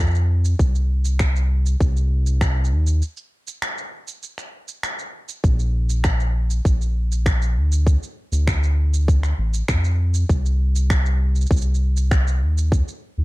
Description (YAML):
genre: folktronica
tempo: 99 BPM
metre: 4/4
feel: straight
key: unclear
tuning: A4 = 439 Hz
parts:
  - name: round analog bass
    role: bass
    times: 0.0-13.2 s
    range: A1 to F2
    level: -18 LUFS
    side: equal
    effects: none
  - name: electronic shaker and finger snaps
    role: drums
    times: 0.0-13.0 s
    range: none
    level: -29 LUFS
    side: right 1 dB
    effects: none
  - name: electronic kick drum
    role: drums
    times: 0.6-12.8 s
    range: none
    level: -19 LUFS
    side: equal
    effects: none
room: little or no reverb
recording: dark, warm production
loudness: -18 LUFS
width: side -20 dB against mid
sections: 0.0-13.2 A section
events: break 3.0-5.4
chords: none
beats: | 0.60 1.20 1.81 2.41 | 3.02 3.63 4.23 4.84 | 5.45 6.05 6.66 7.26 | 7.87 8.47 9.08 9.69 | 10.29 10.90 11.51 12.11 | 12.72